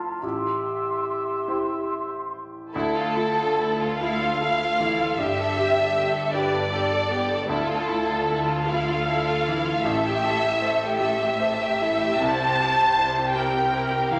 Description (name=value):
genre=cinematic, emotional film score for orchestra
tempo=47-53 BPM (dotted quarters)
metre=6/8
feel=rubato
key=D minor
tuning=A4 = 440 Hz
part: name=bright clarinet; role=second line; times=0.0-2.4 s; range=F4 to G4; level=-33 LUFS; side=equal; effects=none
part: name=mellow hollow large flute ensemble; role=second line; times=0.0-2.4 s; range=A5 to C6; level=-33 LUFS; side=equal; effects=none
part: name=clear baby grand piano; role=accompaniment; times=0.0-14.2 s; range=A1 to C5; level=-32 LUFS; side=equal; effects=none
part: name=mellow oboe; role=second line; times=0.2-2.4 s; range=E5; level=-36 LUFS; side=equal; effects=none
part: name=rich studio violin section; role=melody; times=2.7-14.2 s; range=E4 to A4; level=-32 LUFS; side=equal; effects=none
part: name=warm symphonic violin section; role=second line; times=2.7-14.2 s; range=A4 to A5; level=-25 LUFS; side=equal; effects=none
part: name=clear symphonic double bass section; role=bass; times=2.7-14.2 s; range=G1 to D2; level=-37 LUFS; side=equal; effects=none
part: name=rich symphonic cello section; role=bass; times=2.7-14.2 s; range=D2 to C3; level=-36 LUFS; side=equal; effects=none
part: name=rich symphonic viola section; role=accompaniment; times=4.0-14.2 s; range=E4 to C5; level=-36 LUFS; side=equal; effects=none
room=wet recital hall reverb, RT60 1.3 s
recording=nothing above 10.8 kHz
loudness=-24 LUFS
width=mono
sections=0.0-2.7 A section; 2.7-14.2 B section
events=none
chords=0.2 Am7; 2.7 Dmadd9; 5.2 Gadd9; 7.5 Dmadd9; 9.9 Am7; 12.2 C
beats=| 0.23 1.48 | 2.74 4.00 | 5.18 6.34 | 7.49 8.70 | 9.86 11.00 | 12.21 13.36